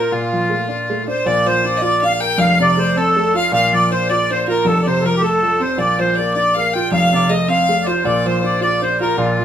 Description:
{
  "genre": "celtic folk, Celtic jig",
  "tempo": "106 BPM (dotted quarters)",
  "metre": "6/8",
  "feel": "straight",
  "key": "Bb major",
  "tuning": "A4 = 440 Hz",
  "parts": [
    { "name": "accordion", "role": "melody", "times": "0.0-9.4 s", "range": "F4 to G5", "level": "-17 LUFS", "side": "equal", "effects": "none" },
    { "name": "clear fiddle", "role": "second line", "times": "0.0-9.4 s", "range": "F4 to G5", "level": "-22 LUFS", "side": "left 2 dB", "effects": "none" },
    { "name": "warm grand piano", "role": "accompaniment", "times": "0.0-9.4 s", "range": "F1 to Bb4", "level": "-18 LUFS", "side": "right 1 dB", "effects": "none" }
  ],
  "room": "wet studio reverb, RT60 0.7 s",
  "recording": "minimal, uncompressed stereo recording",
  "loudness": "-14 LUFS",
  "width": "side -9 dB against mid",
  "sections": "0.0-1.3 A section; 1.3-9.4 A section",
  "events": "none",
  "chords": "0.1 Bbmaj7; 1.3 Bb; 2.4 F; 3.5 Bb; 4.7 F; 5.8 Bb; 6.9 F; 8.0 Bb",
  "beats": "| 0.12 0.69 | 1.25 1.82 | 2.39 2.95 | 3.52 4.08 | 4.65 5.22 | 5.78 6.35 | 6.91 7.48 | 8.04 8.61 | 9.17"
}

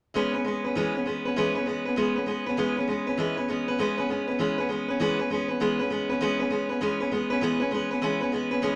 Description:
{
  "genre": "rock",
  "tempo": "198 BPM",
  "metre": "4/4",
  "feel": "swing 64% on 8ths",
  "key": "E major",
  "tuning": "A4 = 440 Hz",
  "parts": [
    { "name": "picked steel-string acoustic guitar", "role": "solo", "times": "0.1-8.8 s", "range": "E3 to B4", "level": "-27 LUFS", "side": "equal", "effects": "none" }
  ],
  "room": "wet small room reverb, RT60 0.6 s",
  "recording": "none",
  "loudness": "-27 LUFS",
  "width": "mono",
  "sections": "0.2-5.0 A section; 5.0-8.8 B section",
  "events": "none",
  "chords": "0.2 E6",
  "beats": "| 0.15 0.46 0.76 1.06 | 1.37 1.67 1.97 2.28 | 2.58 2.88 3.19 3.49 | 3.79 4.09 4.40 4.70 | 5.00 5.31 5.61 5.91 | 6.21 6.52 6.82 7.12 | 7.42 7.72 8.03 8.33 | 8.63"
}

